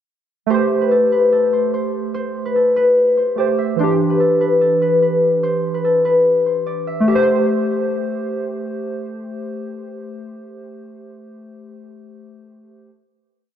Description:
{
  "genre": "hip hop",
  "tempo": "146 BPM",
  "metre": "4/4",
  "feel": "half-time",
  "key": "A minor",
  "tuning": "A4 = 440 Hz",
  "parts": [
    { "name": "concert harp", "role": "melody", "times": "0.5-8.8 s", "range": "A4 to E5", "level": "-16 LUFS", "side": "left 2 dB", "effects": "low-pass filter" },
    { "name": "warbly lo-fi synth keys", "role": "accompaniment", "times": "0.5-12.9 s", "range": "E3 to C5", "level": "-20 LUFS", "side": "right 2 dB", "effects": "chorus, low-pass filter" }
  ],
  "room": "light reverb, small room ambience",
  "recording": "none",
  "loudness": "-15 LUFS",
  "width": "side -9 dB against mid",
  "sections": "0.5-7.1 hook; 7.1-10.4 final chord",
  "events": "none",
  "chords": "0.5 Am7; 3.8 Em7; 7.1 Am7",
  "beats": "| 0.50 0.91 1.32 1.74 | 2.15 2.56 2.97 3.38 | 3.79 4.20 4.61 5.02 | 5.43 5.84 6.25 6.67 | 7.08 7.49 7.90 8.31 | 8.72 9.13 9.54 9.95"
}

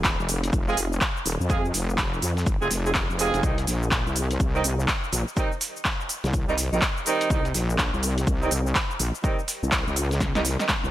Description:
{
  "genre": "bass house",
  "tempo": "124 BPM",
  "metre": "4/4",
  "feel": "swing 61% on 16ths",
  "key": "unclear",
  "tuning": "A4 = 440 Hz",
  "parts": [
    { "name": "wobble bass", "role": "bass", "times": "0.0-10.9 s", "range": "Eb1 to F2", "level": "-26 LUFS", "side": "equal", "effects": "chorus, tube saturation, sidechain pumping" },
    { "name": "big-room dance drum kit", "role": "drums", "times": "0.0-10.9 s", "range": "handclaps, hi-hat, shaker, snare drum", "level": "-27 LUFS", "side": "equal", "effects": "overdrive" },
    { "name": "dusty soul sampler-style drum kit", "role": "drums", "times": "0.0-10.8 s", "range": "hi-hat, shaker, snare drum", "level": "-36 LUFS", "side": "right 1 dB", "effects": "high-pass filter on snare, sidechain pumping on perc, high-pass filter on perc, sidechain pumping on hats, high-pass filter on hats" },
    { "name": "electronic kick drum", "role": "drums", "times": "0.0-10.8 s", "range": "none", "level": "-26 LUFS", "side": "equal", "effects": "overdrive" },
    { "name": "dark horn section", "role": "stabs", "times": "0.7-10.6 s", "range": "Eb3 to Ab4", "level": "-29 LUFS", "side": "right 4 dB", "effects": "sidechain pumping, tape echo" }
  ],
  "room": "light reverb, digital ambience",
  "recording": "none",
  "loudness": "-22 LUFS",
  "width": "side -14 dB against mid",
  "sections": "0.0-10.9 A section",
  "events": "drum fill 10.2-10.9",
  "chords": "0.0 Fm; 3.4 Cm",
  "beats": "0.04 0.53 1.01 | 1.50 1.98 2.46 2.95 | 3.43 3.92 4.40 4.88 | 5.37 5.85 6.34 6.82 | 7.30 7.79 8.27 8.76 | 9.24 9.72 10.21 10.69"
}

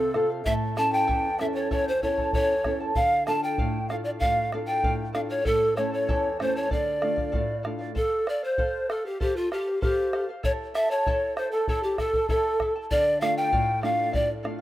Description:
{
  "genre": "andean folk, Andean ensemble",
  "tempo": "96 BPM",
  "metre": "2/4",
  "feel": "straight",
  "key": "unclear",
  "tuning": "A4 = 440 Hz",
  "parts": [
    { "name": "reedy pan flute", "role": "melody", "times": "0.0-14.3 s", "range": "F4 to A5", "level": "-25 LUFS", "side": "equal", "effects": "none" },
    { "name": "breathy mellow large quena", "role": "second line", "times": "0.0-14.3 s", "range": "F4 to A5", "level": "-35 LUFS", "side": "left 2 dB", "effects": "none" },
    { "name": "charango", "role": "accompaniment", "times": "0.0-14.6 s", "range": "E4 to A5", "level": "-34 LUFS", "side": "right 1 dB", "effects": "none" },
    { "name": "nylon-string guitar", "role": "accompaniment", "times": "0.0-7.9, 12.9-14.6 s", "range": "E2 to A4", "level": "-30 LUFS", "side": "equal", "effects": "none" },
    { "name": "bombo", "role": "percussion", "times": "0.1-14.6 s", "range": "none", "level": "-30 LUFS", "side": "equal", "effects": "none" }
  ],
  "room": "light reverb, small room ambience",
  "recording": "rough home demo mix",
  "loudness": "-23 LUFS",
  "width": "side -14 dB against mid",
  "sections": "0.0-8.0 A section; 8.0-14.6 A section",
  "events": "none",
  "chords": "0.5 A; 3.0 Dm; 5.5 A; 6.7 Dm; 8.0 F; 10.4 A; 12.9 Dm",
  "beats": "| 0.46 1.09 | 1.71 2.34 | 2.97 3.59 | 4.22 4.84 | 5.47 6.09 | 6.71 7.34 | 7.96 8.58 | 9.20 9.82 | 10.44 11.06 | 11.68 12.29 | 12.91 13.52 | 14.14"
}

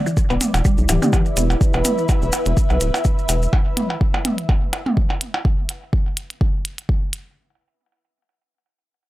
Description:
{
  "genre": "minimal techno",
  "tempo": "125 BPM",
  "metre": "4/4",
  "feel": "swing 55% on 16ths",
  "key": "unclear",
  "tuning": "A4 = 438 Hz",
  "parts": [
    { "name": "mallet-like synth pluck", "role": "riff", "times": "0.0-1.4 s", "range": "D3 to B3", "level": "-24 LUFS", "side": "left 1 dB", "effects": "analog chorus, sidechain pumping, analog delay" },
    { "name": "granular cloud pad", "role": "texture", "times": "0.0-3.5 s", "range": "E4 to E5", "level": "-26 LUFS", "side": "equal", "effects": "built-in reverb, sidechain pumping" },
    { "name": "maracas", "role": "percussion", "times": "0.1-3.5 s", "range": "none", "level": "-29 LUFS", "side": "left 1 dB", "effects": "none" },
    { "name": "electronic kick drum", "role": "drums", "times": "0.2-7.0 s", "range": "none", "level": "-18 LUFS", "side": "equal", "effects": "none" },
    { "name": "rubbery square bass", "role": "bass", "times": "0.3-3.5 s", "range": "D1 to B1", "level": "-19 LUFS", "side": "equal", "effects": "sidechain pumping" },
    { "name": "electronic percussion blips and toms", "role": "percussion", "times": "0.3-5.4 s", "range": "none", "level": "-23 LUFS", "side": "right 1 dB", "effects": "tape echo" },
    { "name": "electronic hi-hat", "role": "drums", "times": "0.4-7.2 s", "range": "none", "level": "-26 LUFS", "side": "equal", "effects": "none" },
    { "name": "vibraphone with soft mallets", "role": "melody", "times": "0.9-1.1 s", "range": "G4", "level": "-32 LUFS", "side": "left 1 dB", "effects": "tape echo" }
  ],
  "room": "little or no reverb",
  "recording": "dry, gritty hardware recording",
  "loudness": "-17 LUFS",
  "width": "side -16 dB against mid",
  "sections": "0.0-7.4 A section",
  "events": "none",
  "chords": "0.0 E5",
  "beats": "0.17 0.65 1.13 | 1.61 2.09 2.57 3.05 | 3.53 4.01 4.49 4.97 | 5.45 5.93 6.41 6.89"
}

